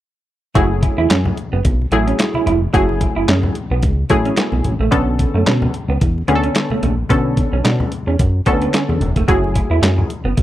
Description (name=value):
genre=early-eighties boogie funk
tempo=110 BPM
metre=4/4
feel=swing 56% on 16ths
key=F# minor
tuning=A4 = 440 Hz
part: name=funky polysynth comp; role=accompaniment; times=0.5-10.1 s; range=D3 to A4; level=-19 LUFS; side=left 2 dB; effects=chorus
part: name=congas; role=percussion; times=0.5-10.4 s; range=none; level=-26 LUFS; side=left 2 dB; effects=none
part: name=electric guitar through a small old amp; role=riff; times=0.6-10.4 s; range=A3 to F#4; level=-21 LUFS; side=right 6 dB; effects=lush chorus
part: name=chorused synth bass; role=bass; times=0.6-10.4 s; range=E1 to B2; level=-18 LUFS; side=equal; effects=none
part: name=detuned 8-bit digital drum machine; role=drums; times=0.6-10.4 s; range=handclaps, hi-hat, kick drum, snare drum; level=-18 LUFS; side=equal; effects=none
room=digital ambience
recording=dry, close 1970s-style studio recording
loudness=-14 LUFS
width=side -13 dB against mid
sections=0.6-10.4 A section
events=none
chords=0.6 F#m9; 4.9 Bm9; 9.3 F#m9